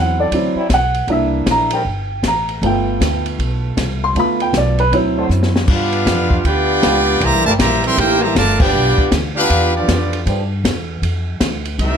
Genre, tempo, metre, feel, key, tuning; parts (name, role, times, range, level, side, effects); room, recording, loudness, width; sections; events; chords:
jazz, big band swing; 157 BPM; 4/4; swing 64% on 8ths; A4 = 440 Hz
warm baby grand piano; accompaniment; 0.0-5.5 s; F#3 to C6; -17 LUFS; right 1 dB
upright bass; bass; 0.0-12.0 s; G1 to G2; -19 LUFS; equal
muted trombone section; sustained chords; 0.2-1.8, 5.2-10.4 s; F3 to C5; -23 LUFS; left 1 dB
open jazz drum kit; drums; 0.3-11.9 s; crash cymbal, hi-hat, kick drum, ride cymbal, snare drum; -20 LUFS; left 1 dB
brilliant trumpet section; melody; 5.7-12.0 s; B3 to C6; -17 LUFS; equal; plate reverb
warm trombone section; second line; 5.7-12.0 s; E3 to G4; -19 LUFS; right 1 dB
light reverb; -14 LUFS; side -7 dB against mid
0.0-5.7 A section; 5.7-12.0 B section
grand piano solo 0.0-5.7; drum fill 5.3-5.7; band accent 8.5
0.0 D7; 1.1 C7; 2.6 G7; 4.9 D7; 5.7 G7; 7.2 C7; 8.7 G7